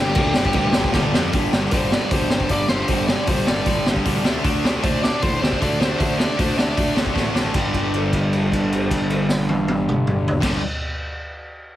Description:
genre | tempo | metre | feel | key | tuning
punk rock | 154 BPM | 4/4 | straight | G minor | A4 = 440 Hz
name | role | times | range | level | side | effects
smooth overdriven lead guitar | melody | 0.0-7.0 s | G4 to G5 | -25 LUFS | equal | none
cranked stack guitar | riff | 0.0-10.6 s | G2 to D4 | -21 LUFS | equal | overdrive
fuzz picked electric bass | bass | 0.0-10.6 s | G1 to A2 | -27 LUFS | equal | overdrive
raw garage drum kit | drums | 0.1-10.5 s | crash cymbal, hi-hat, kick drum, snare drum, toms | -21 LUFS | equal | none
room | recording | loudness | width
little or no reverb | heavily compressed radio sound | -17 LUFS | side -13 dB against mid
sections
0.0-1.3 A section; 1.3-7.5 B section; 7.5-10.7 C section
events
drum fill 0.9-1.3, 7.2-7.5; lead electric guitar solo 1.3-7.5; held note 7.5-10.4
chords
0.0 G5; 4.2 D5; 7.5 G5

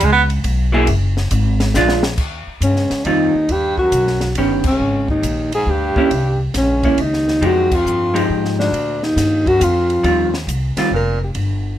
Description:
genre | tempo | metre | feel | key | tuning
jazz, small-group swing and bop | 137 BPM | 3/4 | swing 67% on 8ths | Eb major | A4 = 441 Hz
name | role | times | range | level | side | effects
mellow baritone saxophone | second line | 0.0-0.2, 2.6-11.3 s | Db2 to B3 | -22 LUFS | right 3 dB | none
upright bass | bass | 0.0-11.8 s | F1 to Ab2 | -19 LUFS | equal | none
compact cocktail drum kit | drums | 0.0-11.5 s | crash cymbal, hi-hat, kick drum, ride cymbal, snare drum | -25 LUFS | equal | none
vintage hollow-body jazz guitar | accompaniment | 0.7-10.9 s | Eb3 to G#4 | -17 LUFS | right 1 dB | none
breathy alto saxophone | melody | 2.6-11.3 s | Db4 to Bb4 | -17 LUFS | left 1 dB | none
room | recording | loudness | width
light reverb | none | -14 LUFS | side -12 dB against mid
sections
0.0-2.2 A section; 2.2-11.8 B section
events
baritone saxophone solo 0.0-2.2; drum fill 1.7-2.2; band accent 4.6, 7.6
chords
0.0 E69; 0.9 Gbsus2; 1.7 Bb7; 2.2 Eb69; 3.5 Eb7alt; 4.8 Absus2; 6.1 C7(no3); 7.4 Fm9; 8.7 Bb5; 10.0 Eb69

